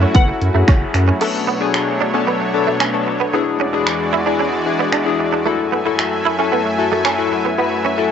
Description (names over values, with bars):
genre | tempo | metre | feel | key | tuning
dance-pop | 113 BPM | 4/4 | straight | F# minor | A4 = 440 Hz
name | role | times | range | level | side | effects
glassy wavetable pluck | melody | 0.0-0.9 s | E5 to F#5 | -24 LUFS | left 5 dB | chorus, cassette tape, tape echo
chorused retro synth keys | accompaniment | 0.0-8.1 s | B3 to B4 | -20 LUFS | left 10 dB | tremolo, sidechain pumping, cassette tape
supersaw pad | sustained chords | 0.0-8.1 s | E2 to G#5 | -20 LUFS | right 1 dB | sidechain pumping, cassette tape
direct-recorded clean electric guitar | riff | 0.0-8.0 s | A3 to E4 | -22 LUFS | right 9 dB | ensemble chorus, cassette tape
saturated sub bass | bass | 0.0-1.1 s | F#1 to F#2 | -16 LUFS | equal | sidechain pumping
pop drum kit | drums | 0.1-7.2 s | crash cymbal, finger snaps, hi-hat, kick drum | -19 LUFS | equal | cassette tape
room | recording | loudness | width
wet spring reverb, RT60 2.4 s | home recording on cassette, nothing above 8.0 kHz | -15 LUFS | side -8 dB against mid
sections
0.0-1.2 A section; 1.2-8.1 B section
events
none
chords
0.0 F#m7; 1.2 Bm7; 3.3 E7; 5.5 F#m7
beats
0.15 0.68 | 1.21 1.74 2.27 2.80 | 3.33 3.87 4.40 4.93 | 5.46 5.99 6.52 7.05 | 7.58 8.11